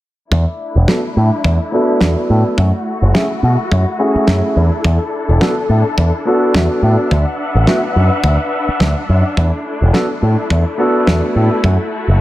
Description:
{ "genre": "nu-disco, nu disco", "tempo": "106 BPM", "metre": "4/4", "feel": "swing 56% on 16ths", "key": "unclear", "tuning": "A4 = 439 Hz", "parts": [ { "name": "dark symphonic string section", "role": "sustained chords", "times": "0.3-12.2 s", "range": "A3 to F#5", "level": "-20 LUFS", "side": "left 2 dB", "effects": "vintage 12-bit sampler grit, sidechain pumping, low-pass filter" }, { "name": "picked electric bass with an envelope filter", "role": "bass", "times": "0.3-12.2 s", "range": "E1 to B2", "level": "-12 LUFS", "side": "equal", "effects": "tube saturation" }, { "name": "kick drum", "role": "drums", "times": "0.3-11.8 s", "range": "none", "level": "-22 LUFS", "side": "equal", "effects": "high-pass filter on kick, studio reverb, high-pass filter on snare, high-pass filter on room" }, { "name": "warm grand piano", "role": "accompaniment", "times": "0.9-11.6 s", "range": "A3 to A4", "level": "-17 LUFS", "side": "equal", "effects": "sidechain pumping, low-pass filter, tape echo" }, { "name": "snare drum", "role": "drums", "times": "0.9-11.2 s", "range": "none", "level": "-19 LUFS", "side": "right 1 dB", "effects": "studio reverb" } ], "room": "light reverb, studio ambience", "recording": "none", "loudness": "-12 LUFS", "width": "side -15 dB against mid", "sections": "0.3-12.2 A section", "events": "filter sweep on grand piano 0.3-12.2; filter sweep on string section 0.3-12.2", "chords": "0.3 E9sus4; 2.6 F#m9; 4.6 E9sus4; 7.1 D69; 9.4 E9sus4; 11.6 F#m7" }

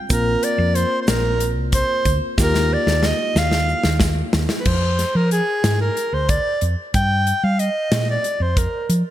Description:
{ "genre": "progressive instrumental, band music in an uneven meter", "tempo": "184 BPM (eighths)", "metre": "7/8", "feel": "straight", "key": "F dorian", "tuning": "A4 = 440 Hz", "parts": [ { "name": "tine electric piano", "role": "accompaniment", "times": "0.0-4.6 s", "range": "Bb3 to Bb4", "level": "-26 LUFS", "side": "left 3 dB", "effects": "medium stereo tremolo" }, { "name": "clear soprano saxophone", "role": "melody", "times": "0.1-8.9 s", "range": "Ab4 to G5", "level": "-21 LUFS", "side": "right 1 dB", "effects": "none" }, { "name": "hollow-body short-scale fingered electric bass", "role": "bass", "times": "0.1-9.0 s", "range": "Bb1 to G3", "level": "-20 LUFS", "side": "equal", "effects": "none" }, { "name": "modern studio drum kit", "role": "drums", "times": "0.1-9.0 s", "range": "crash cymbal, hi-hat, kick drum, snare drum", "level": "-22 LUFS", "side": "equal", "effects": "gated reverb" }, { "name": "tube shaker", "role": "percussion", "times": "0.1-4.5 s", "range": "none", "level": "-34 LUFS", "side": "right 8 dB", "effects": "none" } ], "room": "moderate plate reverb, RT60 2.1 s", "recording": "bright 1980s-style digital production", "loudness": "-17 LUFS", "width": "side -12 dB against mid", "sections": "0.0-4.7 A section; 4.7-9.1 B section", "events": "drum fill 2.4-4.7; soprano saxophone solo 4.7-9.1", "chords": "0.1 Bbsus2; 2.4 Ebadd9; 4.7 Fm; 6.9 Gm7" }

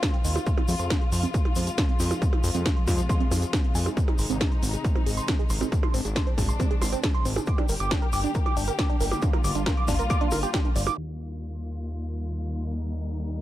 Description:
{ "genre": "uplifting trance", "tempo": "137 BPM", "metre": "4/4", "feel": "straight", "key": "Eb major", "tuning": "A4 = 441 Hz", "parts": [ { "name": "dark studio string section", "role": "sustained chords", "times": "0.0-13.4 s", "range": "C3 to G4", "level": "-33 LUFS", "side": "left 3 dB", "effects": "sidechain pumping, low-pass filter" }, { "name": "tight sequenced synth", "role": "arpeggios", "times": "0.0-10.9 s", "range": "C4 to D6", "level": "-32 LUFS", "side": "right 4 dB", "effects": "chorus, sidechain pumping, digital delay" }, { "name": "electronic kick drum", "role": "drums", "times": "0.0-10.6 s", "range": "none", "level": "-25 LUFS", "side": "equal", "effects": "none" }, { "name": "techno drum kit", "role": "drums", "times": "0.0-11.1 s", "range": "crash cymbal, hi-hat, percussion blips, snare drum", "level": "-31 LUFS", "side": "right 1 dB", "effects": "sidechain pumping on hats, sidechain pumping on perc, sidechain pumping on cymbals" }, { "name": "tube shaker", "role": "percussion", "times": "0.0-13.4 s", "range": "none", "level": "-39 LUFS", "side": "left 3 dB", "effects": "none" }, { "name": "fat analog bass", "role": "bass", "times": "0.2-13.4 s", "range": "G1 to F2", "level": "-28 LUFS", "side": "equal", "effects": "sidechain pumping" }, { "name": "downlifter", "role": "sound effects", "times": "11.2-13.4 s", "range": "none", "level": "-52 LUFS", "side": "equal", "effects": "none" } ], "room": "digital ambience", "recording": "dark, warm production, low-pass filter, faint mains hum", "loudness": "-23 LUFS", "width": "side -14 dB against mid", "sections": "0.0-11.0 A section; 11.0-13.4 B section", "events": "filter sweep on synth arpeggio sound 0.0-11.0", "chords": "0.5 Fm; 4.0 Ab; 7.5 Gm; 11.0 Ebadd9" }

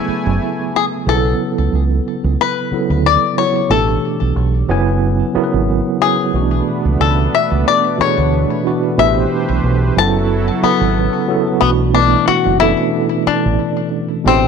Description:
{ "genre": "R&B", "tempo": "91 BPM", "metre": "4/4", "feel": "swing 56% on 16ths", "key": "B dorian", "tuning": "A4 = 440 Hz", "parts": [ { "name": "bluegrass banjo", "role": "melody", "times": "0.0-14.5 s", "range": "B3 to A5", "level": "-17 LUFS", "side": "left 10 dB", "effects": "tape echo" }, { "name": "tine electric piano", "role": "accompaniment", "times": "0.0-14.5 s", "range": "B2 to G#5", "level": "-17 LUFS", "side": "right 3 dB", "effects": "overdrive, fast stereo tremolo" }, { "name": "warm analog pad", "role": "sustained chords", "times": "0.0-1.0, 6.3-11.6 s", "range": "F#3 to G#5", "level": "-22 LUFS", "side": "right 3 dB", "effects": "chorus, tremolo" }, { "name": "deep dub fingered electric bass", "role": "bass", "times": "0.1-14.5 s", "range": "F#1 to D2", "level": "-16 LUFS", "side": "right 3 dB", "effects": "none" } ], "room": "light reverb", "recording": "none", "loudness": "-13 LUFS", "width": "side -6 dB against mid", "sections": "0.0-1.1 A section; 1.1-11.6 B section; 11.6-14.5 A section", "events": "none", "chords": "0.0 F#m9; 1.1 B7sus2; 3.7 Asus2; 4.7 F#sus2; 6.3 Bm9; 9.0 Am9; 10.0 F#m9; 11.6 Bm9" }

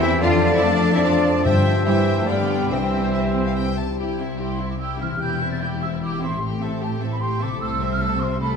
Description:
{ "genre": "classical, dramatic, fast romantic movement for symphony orchestra", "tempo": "138-153 BPM", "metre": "3/4", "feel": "rubato", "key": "C major", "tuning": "A4 = 440 Hz", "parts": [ { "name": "rich symphonic violin section", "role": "melody", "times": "0.0-8.6 s", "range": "G4 to G5", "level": "-35 LUFS", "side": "left 3 dB", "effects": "none" }, { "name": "clear oboe", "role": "second line", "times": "0.0-3.8 s", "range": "D5 to F5", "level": "-29 LUFS", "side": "right 2 dB", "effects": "none" }, { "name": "flute section", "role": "second line", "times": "0.0-8.6 s", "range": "G5 to A6", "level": "-29 LUFS", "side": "right 1 dB", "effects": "none" }, { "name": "mellow clarinet", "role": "second line", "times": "0.0-3.8 s", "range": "A4 to D5", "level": "-28 LUFS", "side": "left 3 dB", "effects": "none" }, { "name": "rich symphonic violin section", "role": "second line", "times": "0.0-8.6 s", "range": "E4 to A5", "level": "-32 LUFS", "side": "left 4 dB", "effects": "none" }, { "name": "mellow bassoon", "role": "accompaniment", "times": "0.0-3.8 s", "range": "D3 to F3", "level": "-27 LUFS", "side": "right 1 dB", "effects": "none" }, { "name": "rich symphonic viola section", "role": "accompaniment", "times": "0.0-8.6 s", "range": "A3 to F5", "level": "-30 LUFS", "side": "right 1 dB", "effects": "none" }, { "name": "dark French horn section", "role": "sustained chords", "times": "0.0-3.8 s", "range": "E3 to D4", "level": "-27 LUFS", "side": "left 1 dB", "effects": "none" }, { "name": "concert harp", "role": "arpeggios", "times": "0.0-8.6 s", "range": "E2 to A5", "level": "-26 LUFS", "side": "left 8 dB", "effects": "none" }, { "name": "rich symphonic cello section", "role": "bass", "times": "0.0-8.6 s", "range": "C2 to F4", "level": "-28 LUFS", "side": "right 3 dB", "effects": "none" }, { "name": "rich symphonic double bass section", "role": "bass", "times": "0.0-8.6 s", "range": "E1 to G2", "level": "-26 LUFS", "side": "right 3 dB", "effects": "none" }, { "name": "timpani", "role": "percussion", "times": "1.5-2.0 s", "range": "G2", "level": "-27 LUFS", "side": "left 1 dB", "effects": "none" } ], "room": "wet concert hall reverb, RT60 2.2 s", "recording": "dark, warm production", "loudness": "-19 LUFS", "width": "side -6 dB against mid", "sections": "0.0-4.0 A section; 4.0-8.6 B section", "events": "none", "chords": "0.2 Dm/F; 1.4 C/G; 2.3 G7; 2.7 C; 5.2 C/E; 6.4 Am7; 7.6 Am/C" }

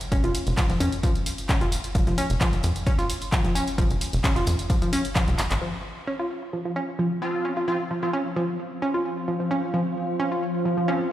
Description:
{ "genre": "driving peak-time techno", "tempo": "131 BPM", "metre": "4/4", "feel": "straight", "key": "unclear", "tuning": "A4 = 439 Hz", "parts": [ { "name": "techno drum kit", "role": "drums", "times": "0.0-5.6 s", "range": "handclaps, hi-hat, tambourine", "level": "-31 LUFS", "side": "right 1 dB", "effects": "low-pass filter on snare, sidechain pumping on hats, low-pass filter on hats, sidechain pumping on perc, low-pass filter on perc, low-pass filter on room" }, { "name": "analog pluck", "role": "riff", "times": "0.1-10.9 s", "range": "F3 to F4", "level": "-27 LUFS", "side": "equal", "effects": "chorus, tube saturation, cassette tape, sidechain pumping, tape echo" }, { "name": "tight sequencer bass", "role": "bass", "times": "0.1-5.6 s", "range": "F1 to F2", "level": "-25 LUFS", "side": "equal", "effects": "sidechain pumping" }, { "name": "electronic kick drum", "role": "drums", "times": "0.1-5.3 s", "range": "none", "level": "-24 LUFS", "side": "equal", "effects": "none" }, { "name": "soft-mallet drum kit", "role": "drums", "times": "0.1-5.5 s", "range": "hi-hat, snare drum", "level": "-42 LUFS", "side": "left 3 dB", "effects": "none" }, { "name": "swarming drone", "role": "drone", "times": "7.2-11.1 s", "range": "F3 to C4", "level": "-33 LUFS", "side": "left 2 dB", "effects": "built-in reverb, sidechain pumping" }, { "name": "deep dark ambient pad", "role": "texture", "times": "8.3-11.1 s", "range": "F4 to F5", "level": "-32 LUFS", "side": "right 2 dB", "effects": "chorus, built-in reverb, sidechain pumping" }, { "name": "rave stab", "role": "stabs", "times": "7.2-8.1, 10.9-11.1 s", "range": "F3 to F4", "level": "-28 LUFS", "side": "equal", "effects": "chorus, built-in reverb, sidechain pumping, digital delay" } ], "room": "light reverb", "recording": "played on a big sound system in a bare room, stone room reverb", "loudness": "-22 LUFS", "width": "side -12 dB against mid", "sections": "0.0-5.6 A section; 5.6-11.1 B section", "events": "drum fill 5.4; band accent 5.5", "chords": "0.0 F5" }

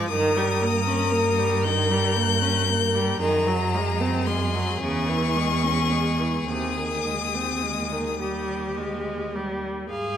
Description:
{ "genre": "classical, slow romantic movement for string quartet", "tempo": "34-39 BPM (dotted quarters)", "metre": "6/8", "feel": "rubato", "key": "unclear", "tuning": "A4 = 435 Hz", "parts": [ { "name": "warm violin", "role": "melody", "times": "0.0-10.2 s", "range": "Bb5 to G6", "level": "-27 LUFS", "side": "left 10 dB", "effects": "none" }, { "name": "rich violin", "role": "second line", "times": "0.0-10.2 s", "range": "F4 to F5", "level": "-30 LUFS", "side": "left 4 dB", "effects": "none" }, { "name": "rich viola", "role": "accompaniment", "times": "0.0-10.2 s", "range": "C3 to Ab4", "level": "-26 LUFS", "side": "right 1 dB", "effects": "none" }, { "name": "warm cello", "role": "bass", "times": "0.0-10.2 s", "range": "Eb2 to Ab2", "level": "-27 LUFS", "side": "right 3 dB", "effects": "none" } ], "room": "wet recital hall reverb, RT60 1.3 s", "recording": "none", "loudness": "-21 LUFS", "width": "side -9 dB against mid", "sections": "0.0-9.9 A section", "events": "none", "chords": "0.1 Eb7/G; 3.2 Ab7/Gb; 4.8 Dbm/Fb; 6.5 Ab/Eb; 8.2 Eb" }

